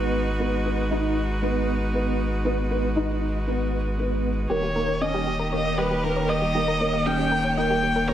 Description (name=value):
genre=electronica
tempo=117 BPM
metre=4/4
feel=straight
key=unclear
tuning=A4 = 440 Hz
part: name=clear string quartet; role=sustained chords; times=0.0-8.1 s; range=D#3 to C#5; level=-28 LUFS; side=equal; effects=none
part: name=felt-muted upright piano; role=riff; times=0.0-8.1 s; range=A#3 to D#4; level=-27 LUFS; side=right 1 dB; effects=ensemble chorus, tape echo
part: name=warm sub bass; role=bass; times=0.0-8.1 s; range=D#1 to G#1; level=-28 LUFS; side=equal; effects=none
part: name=warm viola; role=melody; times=4.5-8.1 s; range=A#4 to G5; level=-25 LUFS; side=equal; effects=tape echo
part: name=soft round pluck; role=arpeggios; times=4.5-8.1 s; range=G4 to D#5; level=-30 LUFS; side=left 1 dB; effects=chorus, cassette tape, tape echo
room=wet plate reverb, RT60 1.3 s, studio reverb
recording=dreamy mix soaked in reverb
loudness=-22 LUFS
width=side -11 dB against mid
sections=0.0-8.1 A section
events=none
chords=0.0 G#m7; 4.5 D#7